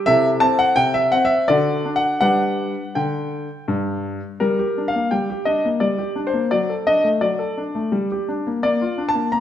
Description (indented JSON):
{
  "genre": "classical-period piano sonatina",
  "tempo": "85 BPM",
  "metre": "3/4",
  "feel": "rubato",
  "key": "G major, G minor from 4.4 s",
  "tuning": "A4 = 444 Hz",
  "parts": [
    { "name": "clear concert grand piano", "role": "solo", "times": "0.0-9.4 s", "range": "G2 to Bb5", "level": "-18 LUFS", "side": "left 1 dB", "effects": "none" }
  ],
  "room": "wet recital hall reverb, RT60 1.5 s",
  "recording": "none",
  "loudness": "-18 LUFS",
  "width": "side -10 dB against mid",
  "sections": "0.0-4.4 A section; 4.4-9.4 B section",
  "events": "none",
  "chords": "0.1 Am/C; 1.5 D; 2.2 G; 4.4 Gm; 6.5 D/F#; 7.9 Gm; 8.6 Bb"
}